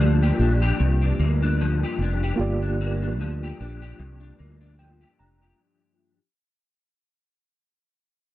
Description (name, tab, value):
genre	indie pop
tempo	75 BPM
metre	4/4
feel	swing 55% on 16ths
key	unclear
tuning	A4 = 441 Hz
part	bright reed electric piano	accompaniment	0.0-5.6 s	Bb3 to Bb5	-31 LUFS	right 3 dB	fast tremolo, cassette tape
part	electric guitar through a small old amp	accompaniment	0.0-6.2 s	G2 to G4	-28 LUFS	left 4 dB	ensemble chorus, warbly pitch drift
part	mellow fretless electric bass	bass	0.0-5.5 s	F1 to D2	-22 LUFS	equal	none
room	little or no reverb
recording	dry, close 1970s-style studio recording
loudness	-20 LUFS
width	side -15 dB against mid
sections	0.0-5.6 A section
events	fade-out 0.0-5.6; reed electric piano fill 4.4-5.6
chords	0.0 C7sus4 (rootless)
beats	0.79 1.59 | 2.39 3.19 3.99 4.79